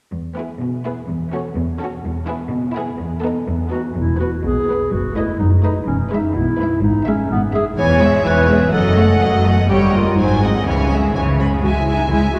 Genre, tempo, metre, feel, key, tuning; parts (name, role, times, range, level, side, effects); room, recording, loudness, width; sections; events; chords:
cinematic, playful, whimsical film cue; 125 BPM; 2/4; straight; E major, C# minor from 7.8 s; A4 = 439 Hz
rich symphonic cello section; bass; 0.1-12.4 s; E2 to C#3; -23 LUFS; equal
rich chamber violin section; melody; 0.4-12.4 s; G#4 to B5; -29 LUFS; equal
rich chamber violin section; second line; 0.4-12.4 s; D#4 to F#5; -29 LUFS; equal
rich studio viola section; accompaniment; 0.4-12.4 s; E3 to C#4; -25 LUFS; equal
warm clarinet; second line; 3.7-12.4 s; B3 to C#5; -22 LUFS; equal
dark chamber double bass section; bass; 4.0-12.4 s; E1 to C#2; -23 LUFS; equal
wet cathedral reverb, RT60 6.7 s; recorded in a church or concert hall; -17 LUFS; mono
0.1-4.0 A section; 4.0-11.6 B section
0.1 E; 1.1 F#m7/E; 2.0 E; 4.9 B7/F#; 5.9 E; 6.8 E/G#; 7.8 C#m/E; 8.7 D#dim/F#; 9.7 D#7/G; 10.2 G#7; 10.7 C#m